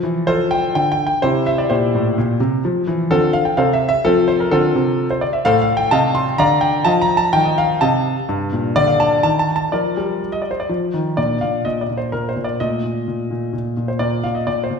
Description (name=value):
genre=classical-period piano sonatina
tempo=127 BPM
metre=3/4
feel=straight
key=F major, Bb major from 5.4 s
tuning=A4 = 443 Hz
part: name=warm concert grand piano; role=solo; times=0.0-14.8 s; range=G2 to C6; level=-15 LUFS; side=equal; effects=none
room=wet scoring stage reverb, RT60 1.6 s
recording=recorded in a church or concert hall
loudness=-15 LUFS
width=side -6 dB against mid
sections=0.0-11.2 A section; 11.2-14.8 B section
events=none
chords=0.0 F; 1.2 C7; 2.6 F; 5.4 F7/A; 6.4 Bb/D; 6.9 F7; 8.3 Gm; 9.2 N.C.; 9.7 Bb/F; 10.7 Ebsus2; 11.2 Bb; 12.6 F7/Bb; 14.0 Bb5